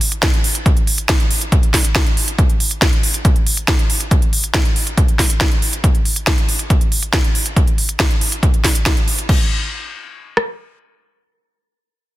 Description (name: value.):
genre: uplifting trance.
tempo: 139 BPM.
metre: 4/4.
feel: straight.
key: none.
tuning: none.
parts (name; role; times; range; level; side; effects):
techno drum kit; drums; 0.0-9.4 s; crash cymbal, hi-hat, snare drum; -18 LUFS; equal; none.
punchy analog drum machine; drums; 0.2-10.5 s; kick drum, rim click; -15 LUFS; equal; none.
room: little or no reverb.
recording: dense, heavily limited modern master.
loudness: -13 LUFS.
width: side -16 dB against mid.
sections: 0.0-9.3 A section; 9.3-12.2 B section.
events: none.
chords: none.